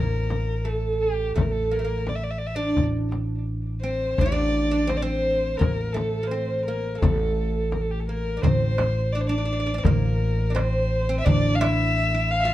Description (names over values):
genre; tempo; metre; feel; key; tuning
Arabic maqam ensemble; 85 BPM; 4/4; straight; A maqam kurd; A4 = 442 Hz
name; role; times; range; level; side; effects
dark violin; melody; 0.0-12.5 s; G4 to F5; -27 LUFS; left 1 dB; none
oud; second line; 0.0-12.5 s; A3 to F4; -28 LUFS; right 2 dB; tape echo
upright bass; bass; 0.0-12.5 s; A1; -25 LUFS; equal; none
frame drum; percussion; 0.3-11.8 s; none; -25 LUFS; left 2 dB; none
darbuka; percussion; 8.4-11.9 s; none; -26 LUFS; right 4 dB; none
room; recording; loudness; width
light reverb; dark, warm production; -21 LUFS; side -14 dB against mid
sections
0.0-8.4 A section; 8.4-12.5 B section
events
none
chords
none